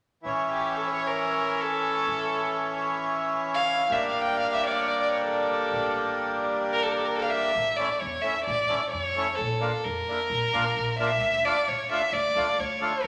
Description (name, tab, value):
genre	klezmer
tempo	free time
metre	none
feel	none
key	A phrygian dominant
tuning	A4 = 440 Hz
part	accordion	accompaniment	0.2-12.9 s	E3 to F4	-30 LUFS	equal	none
part	upright bass	bass	0.2-13.1 s	A1 to F2	-41 LUFS	equal	none
part	warm violin	melody	0.5-13.1 s	G4 to G5	-29 LUFS	equal	none
room	wet large studio reverb, RT60 1.3 s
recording	none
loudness	-26 LUFS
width	mono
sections	0.2-7.6 A section; 7.6-13.1 B section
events	none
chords	0.2 A; 3.9 Gmadd9/A; 7.6 A; 9.4 Bb; 11.2 Dm